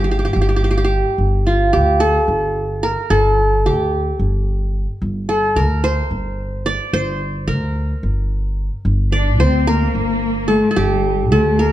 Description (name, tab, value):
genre	Turkish makam ensemble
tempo	219 BPM (eighths)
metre	7/8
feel	straight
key	G makam ussak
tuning	A4 = 437 Hz
part	qanun	melody	0.0-11.7 s	F4 to D5	-18 LUFS	right 1 dB	none
part	upright bass	bass	0.0-11.7 s	G1 to D2	-18 LUFS	equal	none
part	bright cello	drone	0.0-1.2 s	G2	-31 LUFS	left 1 dB	none
part	rich studio cello section	second line	9.1-11.7 s	G3 to D4	-19 LUFS	left 2 dB	none
room	light reverb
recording	dark, warm production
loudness	-15 LUFS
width	side -13 dB against mid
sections	0.0-1.2 A section; 1.2-11.7 B section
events	none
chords	none